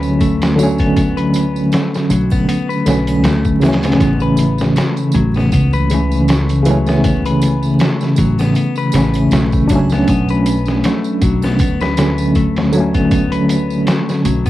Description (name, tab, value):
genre	trip hop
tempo	79 BPM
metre	4/4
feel	swing 55% on 16ths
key	B minor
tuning	A4 = 440 Hz
part	tine electric piano	accompaniment	0.0-14.5 s	C#3 to D4	-14 LUFS	equal	medium stereo tremolo, tape echo
part	clean electric guitar	arpeggios	0.0-14.5 s	F#3 to B4	-22 LUFS	left 6 dB	vintage 12-bit sampler grit, analog delay
part	upright bass	bass	0.0-14.5 s	A1 to D2	-19 LUFS	equal	transformer saturation
part	tambourine and triangle	percussion	0.0-14.5 s	none	-33 LUFS	right 9 dB	none
part	trip hop sampler-style drum kit	drums	0.2-14.5 s	hi-hat, kick drum, snare drum	-19 LUFS	equal	small room reverb, cassette tape
room	little or no reverb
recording	home recording on cassette, vinyl crackle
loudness	-12 LUFS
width	side -15 dB against mid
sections	0.0-14.5 A section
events	none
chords	0.0 Bm7; 4.0 A; 10.1 Bm7